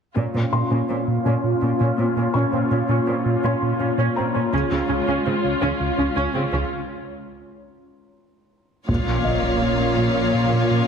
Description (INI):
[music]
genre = cinematic, hybrid orchestral and electronic film score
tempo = 55 BPM (dotted quarters)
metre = 6/8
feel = straight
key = Bb minor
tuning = A4 = 443 Hz
[part]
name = rich symphonic viola section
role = accompaniment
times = 0.2-10.9 s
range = Bb3 to F4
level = -25 LUFS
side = right 1 dB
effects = low-pass filter
[part]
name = airy breathy pad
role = sustained chords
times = 0.2-10.9 s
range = Ab3 to Db5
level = -25 LUFS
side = left 2 dB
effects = chorus, low-pass filter
[part]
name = smooth synth bass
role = riff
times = 0.2-10.8 s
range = Db2 to Bb3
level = -25 LUFS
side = right 1 dB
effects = low-pass filter
[part]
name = rich symphonic cello section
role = bass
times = 0.2-10.9 s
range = Bb2 to Db3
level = -27 LUFS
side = right 2 dB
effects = none
[part]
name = felt-muted upright piano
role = texture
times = 0.5-10.9 s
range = Eb5 to Db6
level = -32 LUFS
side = left 3 dB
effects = digital delay
[part]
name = rich chamber violin section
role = second line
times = 8.9-10.9 s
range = Db5 to F5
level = -26 LUFS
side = left 5 dB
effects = none
[part]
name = warm symphonic double bass section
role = bass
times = 8.9-10.9 s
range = Bb1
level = -28 LUFS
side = right 3 dB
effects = none
[part]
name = solo taiko drums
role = drums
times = 8.9-10.3 s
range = none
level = -26 LUFS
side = left 1 dB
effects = none
[part]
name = sub drop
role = sound effects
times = 8.9-10.9 s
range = none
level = -30 LUFS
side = equal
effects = none
[sound]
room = moderate scoring stage reverb, RT60 1.8 s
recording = heavily compressed radio sound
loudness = -19 LUFS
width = side -7 dB against mid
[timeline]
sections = 0.2-8.9 A section; 8.9-10.9 B section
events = filter sweep 0.2-8.9; break 6.7-8.9; impact 8.9-10.9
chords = 0.2 Bbm; 4.5 Db; 8.9 Bbm